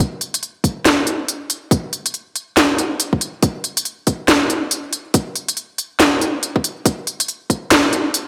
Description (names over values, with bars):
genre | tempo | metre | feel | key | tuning
deep dubstep | 140 BPM | 4/4 | swing 61% on 16ths, half-time | none | none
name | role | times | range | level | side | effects
electronic kick drum | drums | 0.0-7.6 s | none | -20 LUFS | equal | high-pass filter on kick, high-pass filter on room
garage drum kit | drums | 0.2-8.2 s | handclaps, hi-hat, snare drum | -18 LUFS | equal | none
room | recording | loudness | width
moderate lush hall reverb, RT60 1.9 s | none | -19 LUFS | mono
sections
0.0-8.3 A section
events
build-up 0.0-8.3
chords
none